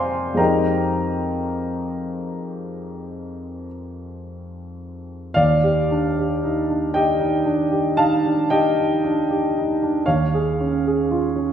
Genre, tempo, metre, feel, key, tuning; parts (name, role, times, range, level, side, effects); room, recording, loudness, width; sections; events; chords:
classical, impressionist solo piano; 35-41 BPM (dotted quarters); 9/8; rubato; Eb major; A4 = 441 Hz
warm grand piano; solo; 0.0-11.5 s; Eb2 to D6; -19 LUFS; equal
wet recital hall reverb, RT60 1.4 s; heard from further back in the room; -18 LUFS; side -9 dB against mid
0.0-5.4 A section; 5.4-11.5 B section
0.4 Fm11; 5.4 Ebmaj7; 10.1 Dbadd9/Eb